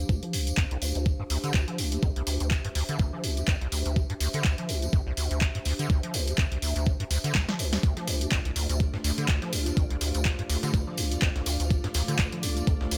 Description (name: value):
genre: acid house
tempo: 124 BPM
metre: 4/4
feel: swing 56% on 16ths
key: D minor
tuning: A4 = 440 Hz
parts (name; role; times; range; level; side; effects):
- deep acid bass; riff; 0.0-13.0 s; C2 to F3; -32 LUFS; equal; overdrive, ensemble chorus, sidechain pumping, tape echo
- warbly tape-like pad; texture; 0.0-13.0 s; D4 to F5; -40 LUFS; equal; chorus, built-in reverb, sidechain pumping
- electronic kick drum; drums; 0.1-12.8 s; none; -27 LUFS; equal; overdrive
- tambourine; percussion; 0.1-13.0 s; none; -40 LUFS; equal; none
- punchy analog drum machine; drums; 0.2-13.0 s; handclaps, hi-hat, snare drum; -34 LUFS; equal; none
- string machine, full ensemble; sustained chords; 7.8-13.0 s; A3 to D5; -40 LUFS; equal; ensemble chorus, sidechain pumping
- breakbeat sampler-style drum kit; drums; 7.8-13.0 s; hi-hat, snare drum; -44 LUFS; equal; none
room: light reverb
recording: none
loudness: -27 LUFS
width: mono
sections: 0.0-13.0 A section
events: drum fill 7.3-7.8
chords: 0.0 Dm